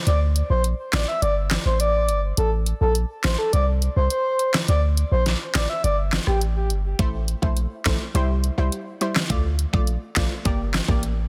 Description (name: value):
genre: dancehall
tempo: 104 BPM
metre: 4/4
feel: straight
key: unclear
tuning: A4 = 440 Hz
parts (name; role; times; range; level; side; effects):
- breathy flute-like synth lead; melody; 0.1-6.4 s; G4 to E5; -27 LUFS; equal; chorus, tape echo
- warm 808-style bass; bass; 0.1-11.3 s; G1 to D2; -24 LUFS; equal; none
- pop drum kit; drums; 0.1-11.2 s; handclaps, hi-hat, kick drum, rim click, snare drum; -26 LUFS; equal; overdrive
- analog pluck; accompaniment; 7.0-11.0 s; G3 to D5; -31 LUFS; equal; chorus
room: digital ambience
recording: dense, heavily limited modern master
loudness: -22 LUFS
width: mono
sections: 0.0-11.3 A section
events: break 0.0-7.0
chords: 0.1 D5; 1.2 Gsus2; 2.4 N.C.; 4.7 D5; 5.8 Gsus2; 7.0 Am; 8.1 C; 9.3 Dm; 10.5 Gm